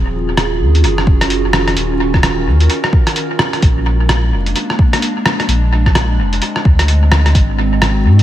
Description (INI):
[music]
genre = future garage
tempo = 129 BPM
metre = 4/4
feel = swing 61% on 16ths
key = Eb dorian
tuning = A4 = 440 Hz
[part]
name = warbly tape-like pad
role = sustained chords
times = 0.0-8.2 s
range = Eb3 to Bb4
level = -19 LUFS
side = right 1 dB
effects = chorus, built-in reverb, phaser, sidechain pumping
[part]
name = warm sub bass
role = bass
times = 0.0-8.2 s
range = Eb1 to Ab2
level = -13 LUFS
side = equal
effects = none
[part]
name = lo-fi sampler-style drum kit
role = drums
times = 0.4-8.2 s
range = hi-hat, rim click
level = -17 LUFS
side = equal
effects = dub echo
[part]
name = electronic kick drum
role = drums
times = 1.1-7.5 s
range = none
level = -11 LUFS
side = equal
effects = none
[sound]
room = light reverb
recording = echo-heavy mix, vinyl crackle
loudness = -11 LUFS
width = side -13 dB against mid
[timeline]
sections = 0.0-8.2 A section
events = none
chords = 0.0 Ebm11; 3.6 Bb9; 7.3 Ab7